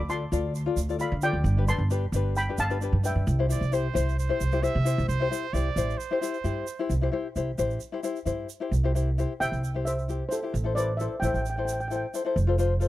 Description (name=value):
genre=calypso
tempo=132 BPM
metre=4/4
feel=straight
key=C major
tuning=A4 = 440 Hz
part: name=steel pan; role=melody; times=0.0-4.6, 9.4-12.0 s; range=A4 to C6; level=-31 LUFS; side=right 1 dB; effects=tape echo
part: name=upright bass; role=bass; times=0.0-12.9 s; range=F1 to D3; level=-26 LUFS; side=right 1 dB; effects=none
part: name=tenor ukulele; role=accompaniment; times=0.1-12.9 s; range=D4 to D5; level=-30 LUFS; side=left 5 dB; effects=none
part: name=tube shaker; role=percussion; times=0.1-12.9 s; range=none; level=-43 LUFS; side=right 11 dB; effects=none
part: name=bright trumpet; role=second line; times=3.5-6.9 s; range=C5 to E5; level=-33 LUFS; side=right 7 dB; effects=none
room=small room ambience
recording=dry, close 1970s-style studio recording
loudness=-24 LUFS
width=side -15 dB against mid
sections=0.0-5.1 A section; 5.1-8.7 B section; 8.7-12.9 C section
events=none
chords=0.0 Dm; 1.4 G; 3.3 C; 10.5 Am; 12.4 F